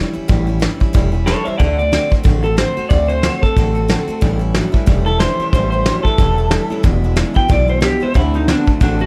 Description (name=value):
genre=rockabilly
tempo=183 BPM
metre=4/4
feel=swing 59% on 8ths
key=unclear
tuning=A4 = 440 Hz
part: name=picked steel-string acoustic guitar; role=accompaniment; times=0.0-9.1 s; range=E2 to F#4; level=-25 LUFS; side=equal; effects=none
part: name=upright bass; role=bass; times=0.2-9.1 s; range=E1 to D2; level=-21 LUFS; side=equal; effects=none
part: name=vintage brush drum kit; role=drums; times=0.3-8.9 s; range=hi-hat, kick drum, snare drum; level=-18 LUFS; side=equal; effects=none
part: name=electric guitar through a small old amp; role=melody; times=1.3-9.1 s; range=D4 to G5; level=-21 LUFS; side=equal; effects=analog delay
part: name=electric guitar through a small old amp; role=riff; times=4.2-9.1 s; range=E2 to B3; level=-26 LUFS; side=equal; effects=none
room=light reverb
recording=none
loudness=-15 LUFS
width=mono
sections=0.0-9.1 A section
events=none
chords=0.0 A7; 1.6 D7; 4.2 A7; 6.8 E7; 8.2 D7